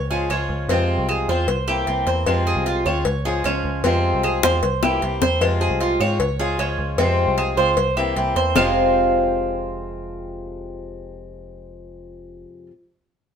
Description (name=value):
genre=latin, Cuban son and guajira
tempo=153 BPM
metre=4/4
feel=straight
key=F harmonic minor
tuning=A4 = 440 Hz
part: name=Cuban tres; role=arpeggios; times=0.0-12.7 s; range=C4 to F5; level=-22 LUFS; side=right 4 dB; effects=none
part: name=metallic FM bass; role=bass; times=0.0-12.5 s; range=F1 to Ab2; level=-25 LUFS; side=right 1 dB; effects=none
part: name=fingerpicked swing-style acoustic guitar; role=accompaniment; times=0.1-12.7 s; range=F2 to F4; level=-24 LUFS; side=left 5 dB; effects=none
part: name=claves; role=percussion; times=0.3-8.7 s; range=none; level=-26 LUFS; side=right 1 dB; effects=none
part: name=cowbell and bongos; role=percussion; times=0.3-8.6 s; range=none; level=-25 LUFS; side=left 6 dB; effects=none
room=moderate studio reverb, RT60 0.8 s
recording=minimal, uncompressed stereo recording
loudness=-18 LUFS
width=side -7 dB against mid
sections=0.0-5.4 A section; 5.4-8.6 B section; 8.6-11.7 C section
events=drum fill 4.4-5.4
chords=0.0 Db; 0.7 Fm; 1.5 C7; 2.3 Fm; 3.1 Db; 3.8 Fm; 4.6 C7; 5.4 Fm; 6.2 Db; 7.0 Fm; 7.8 C7; 8.6 Fm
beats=0.30 | 0.70 1.09 1.49 1.88 | 2.27 2.67 3.06 3.45 | 3.85 4.24 4.63 5.02 | 5.42 5.81 6.20 6.59 | 6.99 7.38 7.77 8.17 | 8.56 8.95 9.35 9.74 | 10.13 10.53 10.92 11.31